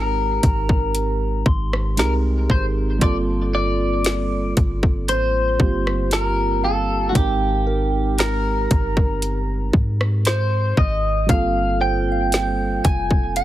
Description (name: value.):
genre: contemporary R&B.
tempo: 58 BPM.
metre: 4/4.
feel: straight.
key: G phrygian.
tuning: A4 = 439 Hz.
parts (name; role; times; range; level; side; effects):
clean electric guitar; melody; 0.0-13.4 s; F#4 to Ab5; -23 LUFS; equal; wide subtle chorus.
mellow FM electric piano; accompaniment; 0.0-13.4 s; G3 to Bb4; -26 LUFS; right 3 dB; chorus.
clean 808-style bass; bass; 0.0-13.4 s; F1 to Ab2; -22 LUFS; equal; none.
trap drum kit; drums; 0.4-13.4 s; hi-hat, kick drum, rim click, snare drum; -20 LUFS; equal; none.
soft synth bell; texture; 1.5-13.4 s; Bb4 to G6; -34 LUFS; left 1 dB; chorus, phaser, digital delay.
room: little or no reverb.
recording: heavily compressed radio sound, multiband compression.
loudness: -17 LUFS.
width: side -14 dB against mid.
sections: 0.0-13.4 A section.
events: none.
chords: 0.0 Abmaj9; 3.0 Gm11; 7.2 Abmaj9; 11.3 Gm11.